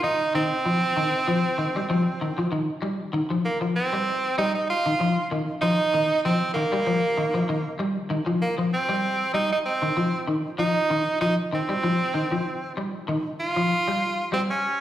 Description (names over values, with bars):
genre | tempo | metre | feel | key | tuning
afrobeat | 97 BPM | 4/4 | swing 54% on 16ths | unclear | A4 = 439 Hz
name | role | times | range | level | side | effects
edgy tenor saxophone | melody | 0.0-14.8 s | Bb3 to F4 | -24 LUFS | right 2 dB | slapback echo
electric guitar at the edge of break-up | arpeggios | 0.0-14.5 s | Eb3 to G3 | -25 LUFS | left 2 dB | ensemble chorus, slapback echo
room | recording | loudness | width
moderate plate reverb, RT60 3.1 s | live gig heard through the venue's PA, recital hall reverb | -22 LUFS | side -12 dB against mid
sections
0.0-14.8 A section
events
none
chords
0.0 N.C.; 0.6 Ebadd9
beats
0.03 | 0.65 1.27 1.89 2.51 | 3.13 3.75 4.37 4.99 | 5.62 6.24 6.86 7.48 | 8.10 8.72 9.34 9.96 | 10.58 11.21 11.83 12.45 | 13.07 13.69 14.31